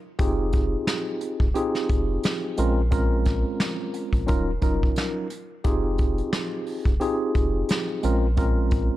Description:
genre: hip hop, boom-bap hip-hop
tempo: 88 BPM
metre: 4/4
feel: swing 57% on 16ths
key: F minor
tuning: A4 = 440 Hz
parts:
  - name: mellow tine electric piano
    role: accompaniment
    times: 0.2-9.0 s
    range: Gb3 to Bb4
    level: -26 LUFS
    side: equal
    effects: medium stereo tremolo, cassette tape, high-pass filter, low-pass filter
  - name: soft dub sub bass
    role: bass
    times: 0.2-8.9 s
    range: Eb1 to Bb1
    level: -25 LUFS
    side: equal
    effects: none
  - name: vintage brush drum kit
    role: drums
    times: 0.2-8.9 s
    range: hi-hat, kick drum, snare drum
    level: -25 LUFS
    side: equal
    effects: none
room: little or no reverb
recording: none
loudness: -22 LUFS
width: side -15 dB against mid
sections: 0.0-9.0 A section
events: break 0.0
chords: 0.2 Fm9; 2.6 Bbm9; 4.3 Ebm9; 5.6 Fm9; 8.0 Bbm9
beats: | 0.19 0.88 1.56 2.24 | 2.92 3.60 4.29 4.97 | 5.65 6.33 7.01 7.69 | 8.38

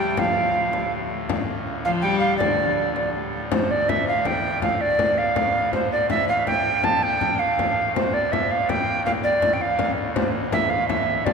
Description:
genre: medieval dance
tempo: 108 BPM (dotted quarters)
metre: 6/8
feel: straight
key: D minor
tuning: A4 = 440 Hz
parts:
  - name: mellow tenor recorder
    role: melody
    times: 0.0-11.3 s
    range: C5 to A5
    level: -21 LUFS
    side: right 2 dB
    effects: none
  - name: clear viola da gamba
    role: second line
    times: 0.0-3.1 s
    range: D3 to G3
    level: -27 LUFS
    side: left 3 dB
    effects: none
  - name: pipe organ, trumpet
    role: drone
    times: 0.0-11.3 s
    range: D2 to A2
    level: -31 LUFS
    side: left 1 dB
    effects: none
  - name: frame drum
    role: percussion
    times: 0.2-11.3 s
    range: none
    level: -26 LUFS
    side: left 4 dB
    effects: none
room: wet cathedral reverb, RT60 4.3 s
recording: band playing live in one room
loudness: -19 LUFS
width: side -5 dB against mid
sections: 0.0-3.5 A section; 3.5-11.3 B section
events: none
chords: none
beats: | 0.17 0.73 | 1.29 1.84 | 2.40 2.96 | 3.51 4.07 | 4.62 5.18 | 5.73 6.29 | 6.84 7.39 | 7.95 8.50 | 9.05 9.61 | 10.16 10.71 | 11.26

